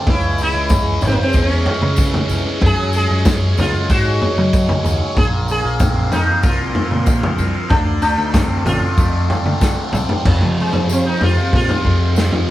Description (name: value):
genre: psychedelic rock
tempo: 94 BPM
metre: 4/4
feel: straight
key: F minor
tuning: A4 = 443 Hz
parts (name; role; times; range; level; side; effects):
- string machine, full ensemble; sustained chords; 0.0-12.5 s; Ab4 to Db6; -32 LUFS; right 2 dB; none
- fuzz guitar; riff; 0.0-12.5 s; F2 to Db4; -22 LUFS; equal; distortion, phaser
- sitar; melody; 0.1-12.5 s; Ab3 to Ab4; -22 LUFS; equal; none
- fuzz picked electric bass; bass; 0.1-12.5 s; Ab1 to Gb3; -20 LUFS; equal; overdrive
- crunchy breakbeat drum kit; drums; 0.1-12.5 s; crash cymbal, kick drum, snare drum, toms; -17 LUFS; equal; none
- tambourine; percussion; 0.4-12.3 s; none; -36 LUFS; left 4 dB; none
room: moderate studio reverb, RT60 0.9 s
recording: band playing live in one room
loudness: -14 LUFS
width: side -14 dB against mid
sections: 0.0-10.3 A section; 10.3-12.5 B section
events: drum fill 9.6-10.3; sitar solo 10.3-12.5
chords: 0.1 Dbm; 2.6 Gbsus2; 5.2 Bbsus2; 7.7 Dm7; 10.3 Fm